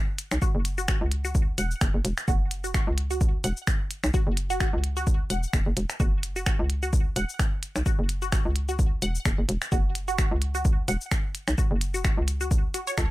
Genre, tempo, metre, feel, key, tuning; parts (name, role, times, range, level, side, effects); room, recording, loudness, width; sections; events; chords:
minimal techno; 129 BPM; 4/4; swing 56% on 16ths; A4 = 440 Hz
minimal click drum kit; drums; 0.2-13.1 s; cabasa, finger snaps, hi-hat; -31 LUFS; equal
hollow knocking FM bass; bass; 0.3-13.1 s; E1 to C#2; -28 LUFS; equal; tube saturation, sidechain pumping
resonant blip pluck; riff; 0.4-13.0 s; F#4 to F#5; -33 LUFS; right 1 dB; phaser, vintage 12-bit sampler grit, sidechain pumping, digital delay
electronic kick drum; drums; 0.4-13.1 s; -24 LUFS; equal
little or no reverb; -23 LUFS; side -18 dB against mid
0.0-13.1 A section
0.0 F#5